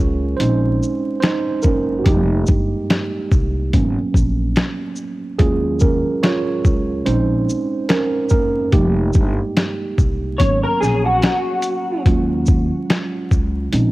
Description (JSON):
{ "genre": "lo-fi hip hop", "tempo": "72 BPM", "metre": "4/4", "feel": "swing 59% on 16ths", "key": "Eb dorian", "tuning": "A4 = 440 Hz", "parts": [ { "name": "tine electric piano", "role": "accompaniment", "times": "0.0-13.9 s", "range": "Gb3 to Db5", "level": "-20 LUFS", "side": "right 3 dB", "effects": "overdrive, fast stereo tremolo, low-pass filter, cassette tape" }, { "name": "upright bass", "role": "bass", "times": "0.0-13.9 s", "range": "F1 to Eb2", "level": "-20 LUFS", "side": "equal", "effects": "none" }, { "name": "lo-fi sampler-style drum kit", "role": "drums", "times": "0.4-13.9 s", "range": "hi-hat, kick drum, shaker, snare drum", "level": "-17 LUFS", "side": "equal", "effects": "cassette tape" }, { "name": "electric guitar through a small old amp", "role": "second line", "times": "10.4-12.0 s", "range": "Gb4 to Db5", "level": "-20 LUFS", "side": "left 1 dB", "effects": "ensemble chorus, low-pass filter, cassette tape, analog delay" } ], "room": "little or no reverb", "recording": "home recording on cassette, vinyl crackle", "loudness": "-15 LUFS", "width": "side -18 dB against mid", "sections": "0.0-13.9 A section", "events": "tine electric piano solo 0.0-13.9", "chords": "0.4 Bbm11; 2.1 Fm11; 3.7 Abm11; 5.4 Ebm11; 7.1 Bbm11; 8.7 Fm11; 10.4 Abm11; 12.1 Ebm11", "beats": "0.40 1.23 | 2.06 2.90 3.73 4.56 | 5.40 6.23 7.06 7.90 | 8.73 9.56 10.40 11.23 | 12.06 12.90 13.73" }